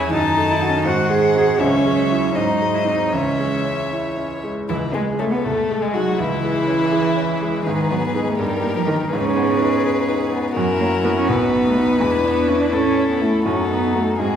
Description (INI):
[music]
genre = quick classical-period movement for piano quintet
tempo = 82 BPM (dotted quarters)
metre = 6/8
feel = rubato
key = C# minor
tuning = A4 = 440 Hz
[part]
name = rich violin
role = melody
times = 0.0-14.4 s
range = G#3 to A5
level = -23 LUFS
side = left 4 dB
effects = none
[part]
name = rich violin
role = second line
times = 0.0-14.4 s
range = G#3 to D#5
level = -26 LUFS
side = left 2 dB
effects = none
[part]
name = warm cello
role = second line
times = 0.0-14.4 s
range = C#3 to D4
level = -22 LUFS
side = right 3 dB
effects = none
[part]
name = clear baby grand piano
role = accompaniment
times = 0.0-14.4 s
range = B1 to B4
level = -23 LUFS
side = equal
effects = none
[part]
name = dark viola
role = accompaniment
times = 0.0-14.4 s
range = E3 to G#4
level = -23 LUFS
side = right 2 dB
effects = none
[sound]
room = wet recital hall reverb, RT60 1.4 s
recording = heard from further back in the room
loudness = -16 LUFS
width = side -8 dB against mid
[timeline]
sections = 0.0-4.7 A section; 4.7-14.4 B section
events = none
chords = 0.1 D#dim/F#; 0.9 G#7; 1.6 C#m; 2.3 G#; 3.1 C#m; 4.7 C#5; 5.4 G#/B#; 6.2 C#m; 7.7 G#m; 8.4 D#/G; 9.1 G#m; 10.6 F#7; 11.3 B; 12.0 E5; 12.7 A; 13.5 D#dim/F#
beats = | 0.13 0.86 | 1.60 2.35 | 3.12 3.91 | 4.69 5.45 | 6.19 6.92 | 7.66 8.39 | 9.11 9.83 | 10.55 11.28 | 12.00 12.72 | 13.45 14.20